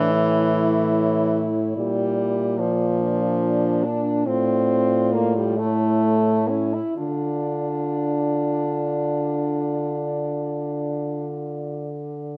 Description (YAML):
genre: classical, lyrical piece for horn quartet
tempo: 40-49 BPM (dotted quarters)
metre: 12/8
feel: rubato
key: D minor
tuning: A4 = 440 Hz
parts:
  - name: mellow French horn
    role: melody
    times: 0.0-12.4 s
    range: C#5 to D5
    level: -33 LUFS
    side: equal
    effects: none
  - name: warm French horn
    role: second line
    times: 0.0-12.0 s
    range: D4 to F4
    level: -30 LUFS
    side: equal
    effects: none
  - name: warm French horn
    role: accompaniment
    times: 0.0-11.3 s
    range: E3 to E4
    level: -26 LUFS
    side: equal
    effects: none
  - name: mellow French horn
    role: bass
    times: 0.0-12.4 s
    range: A2 to D3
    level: -27 LUFS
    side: equal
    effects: none
room: light reverb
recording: close, detailed microphones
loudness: -22 LUFS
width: mono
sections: 0.0-12.4 A section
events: none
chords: 0.0 A; 1.8 Bb; 4.3 Dm/A; 5.6 A; 7.0 Dm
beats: 0.52 | 1.76 3.00 4.27 5.57 | 6.97 8.44 9.90 11.30